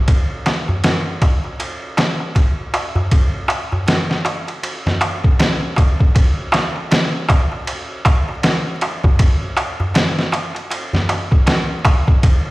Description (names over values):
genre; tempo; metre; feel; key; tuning
trip hop; 79 BPM; 4/4; swing 59% on 16ths; none; none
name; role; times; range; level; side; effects
trip hop sampler-style drum kit; drums; 0.1-12.4 s; kick drum, ride cymbal, snare drum; -15 LUFS; equal; overdrive
darbuka; percussion; 0.1-12.4 s; none; -22 LUFS; equal; none
room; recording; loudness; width
light reverb, digital ambience; played on a big sound system in a bare room, stone room reverb, vinyl crackle; -15 LUFS; side -20 dB against mid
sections
0.0-6.2 A section; 6.2-12.5 B section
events
none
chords
none